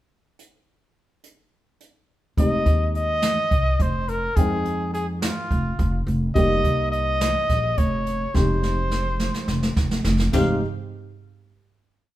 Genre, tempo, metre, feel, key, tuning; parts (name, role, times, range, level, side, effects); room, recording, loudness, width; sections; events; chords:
progressive instrumental, band music in an uneven meter; 211 BPM (eighths); 7/8; straight; F minor; A4 = 440 Hz
jazz brush drum kit; drums; 0.4-10.5 s; crash cymbal, hi-hat, kick drum, snare drum, toms; -24 LUFS; right 1 dB
warm trumpet; melody; 2.4-10.6 s; F4 to F5; -25 LUFS; equal
dark baby grand piano; accompaniment; 2.4-10.6 s; G3 to G5; -27 LUFS; left 1 dB
upright bass; bass; 2.4-10.6 s; F1 to F2; -24 LUFS; equal
light reverb; band playing live in one room; -20 LUFS; side -14 dB against mid
0.4-2.4 pickup bar; 2.4-10.3 A section; 10.3-12.2 final chord
drum fill 8.3-10.3
0.4 N.C.; 2.4 Fm7; 6.4 Eb/F; 8.3 Fm7